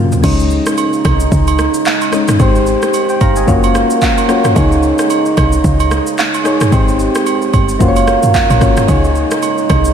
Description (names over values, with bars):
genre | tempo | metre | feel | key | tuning
afrobeats | 111 BPM | 4/4 | swing 58% on 16ths | unclear | A4 = 440 Hz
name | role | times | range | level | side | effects
soft electric-piano-like synth keys | accompaniment | 0.0-9.9 s | Db3 to Bb5 | -16 LUFS | left 4 dB | chorus
dark brass ensemble | sustained chords | 0.0-9.9 s | Db3 to F5 | -17 LUFS | right 4 dB | stereo widening
deep house drum kit | drums | 0.1-9.9 s | crash cymbal, handclaps, kick drum, rim click, shaker, toms | -16 LUFS | equal | overdrive
woody log drum bass | bass | 0.2-9.9 s | Gb1 to Db2 | -14 LUFS | equal | none
agogo bells and woodblock | percussion | 0.2-9.8 s | none | -21 LUFS | right 10 dB | none
room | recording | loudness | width
moderate huge ambient reverb, RT60 7.3 s | dreamy mix soaked in reverb | -10 LUFS | side -8 dB against mid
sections
0.2-9.9 A section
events
drum fill 0.0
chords
0.2 Dbsus2; 2.4 Abmaj7; 3.5 Gbmaj7; 4.6 Dbsus2; 6.7 Abmaj7; 7.8 Gbmaj7; 8.9 Dbsus2